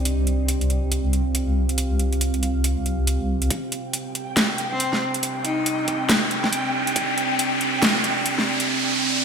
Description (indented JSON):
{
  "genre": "deep dubstep",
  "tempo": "139 BPM",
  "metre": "4/4",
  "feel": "swing 60% on 16ths, half-time",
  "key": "unclear",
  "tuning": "A4 = 440 Hz",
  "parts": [
    { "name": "deep dark ambient pad", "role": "sustained chords", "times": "0.0-9.2 s", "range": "C4 to F5", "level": "-28 LUFS", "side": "right 3 dB", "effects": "chorus, built-in reverb" },
    { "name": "deep soft wobble bass", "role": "bass", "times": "0.0-3.5 s", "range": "C2", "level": "-22 LUFS", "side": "equal", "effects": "chorus" },
    { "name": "dubstep drum kit", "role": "drums", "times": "0.1-8.7 s", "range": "hi-hat, snare drum", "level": "-22 LUFS", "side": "equal", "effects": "studio reverb" },
    { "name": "electronic kick drum", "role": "drums", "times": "3.5-7.1 s", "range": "none", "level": "-32 LUFS", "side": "equal", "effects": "high-pass filter on kick, studio reverb" },
    { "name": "riser", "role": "sound effects", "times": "5.0-9.2 s", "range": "none", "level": "-25 LUFS", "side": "equal", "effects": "none" },
    { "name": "backwards swelling texture", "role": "texture", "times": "3.9-8.7 s", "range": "G5", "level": "-28 LUFS", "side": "equal", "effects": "built-in reverb" },
    { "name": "rich cello", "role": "melody", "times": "4.7-6.1 s", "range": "C4 to Eb4", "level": "-30 LUFS", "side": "left 1 dB", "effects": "dub echo" }
  ],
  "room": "moderate lush hall reverb, RT60 1.9 s",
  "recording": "bright 1980s-style digital production",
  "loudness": "-20 LUFS",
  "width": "side -6 dB against mid",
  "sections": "0.0-3.5 A section; 3.5-9.2 B section",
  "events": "filter sweep on ambient pad 0.0-3.5, 3.5-9.2; build-up 3.5-9.2; riser 5.0-9.2",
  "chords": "0.0 C5",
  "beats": "| 0.05 0.48 0.92 1.35 | 1.78 2.21 2.64 3.08 | 3.51 3.94 4.37 4.80 | 5.23 5.67 6.10 6.53 | 6.96 7.39 7.82 8.26 | 8.69 9.12"
}